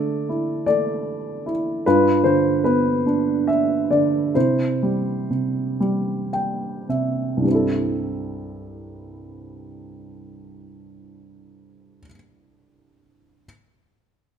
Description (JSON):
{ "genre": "classical, lyrical solo piano", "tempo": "34-51 BPM (dotted quarters)", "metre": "6/8", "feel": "rubato", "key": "C major", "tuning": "A4 = 440 Hz", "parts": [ { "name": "dark baby grand piano", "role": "solo", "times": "0.0-13.5 s", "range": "C2 to G5", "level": "-20 LUFS", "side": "right 1 dB", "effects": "none" } ], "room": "moderate recital hall reverb, RT60 1.5 s", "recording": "minimal, uncompressed stereo recording", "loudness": "-19 LUFS", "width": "side -8 dB against mid", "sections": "0.0-7.5 A section; 7.5-10.9 B section", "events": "slowing down 1.9-7.5; grand piano fill 5.8-7.5", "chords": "0.0 Dsus2; 1.9 G7; 4.4 C; 7.5 C6" }